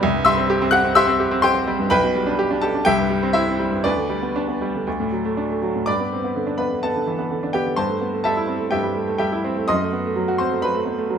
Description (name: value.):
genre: classical, virtuoso piano study.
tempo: 116-130 BPM.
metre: 4/4.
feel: rubato.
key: G major.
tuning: A4 = 440 Hz.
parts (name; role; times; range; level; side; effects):
clear baby grand piano; solo; 0.0-11.2 s; B1 to F#6; -18 LUFS; equal; none.
room: light reverb.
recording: none.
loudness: -18 LUFS.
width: side -7 dB against mid.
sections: 0.0-5.9 A section; 5.9-11.2 B section.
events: none.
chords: 0.0 C; 1.9 G/B; 2.9 C; 3.8 G/D; 4.9 D; 5.9 G; 7.8 Am7/G; 9.7 F#dim7.